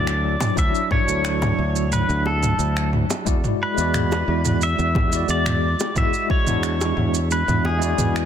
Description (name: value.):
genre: sunset chillout.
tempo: 89 BPM.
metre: 4/4.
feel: straight.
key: unclear.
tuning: A4 = 439 Hz.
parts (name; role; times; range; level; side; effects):
pedal steel guitar; melody; 0.0-8.3 s; G#4 to E5; -24 LUFS; equal; digital delay.
bell-like tine electric piano; accompaniment; 0.0-8.3 s; F#3 to E5; -26 LUFS; moving between left 6 dB and right 5 dB; medium stereo tremolo, auto-pan, digital delay.
modern bright fingered electric bass; bass; 0.0-8.3 s; D2 to E2; -23 LUFS; equal; none.
deep house drum kit; drums; 0.1-8.3 s; finger snaps, shaker, toms; -25 LUFS; right 1 dB; soft clipping on snare.
bongos; percussion; 0.4-7.8 s; none; -30 LUFS; left 1 dB; none.
electronic kick drum; drums; 0.6-6.4 s; none; -22 LUFS; equal; none.
room: digital ambience.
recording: dense, heavily limited modern master.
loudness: -18 LUFS.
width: side -9 dB against mid.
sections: 0.0-8.3 A section.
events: none.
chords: 0.0 Dmaj9; 3.3 E9.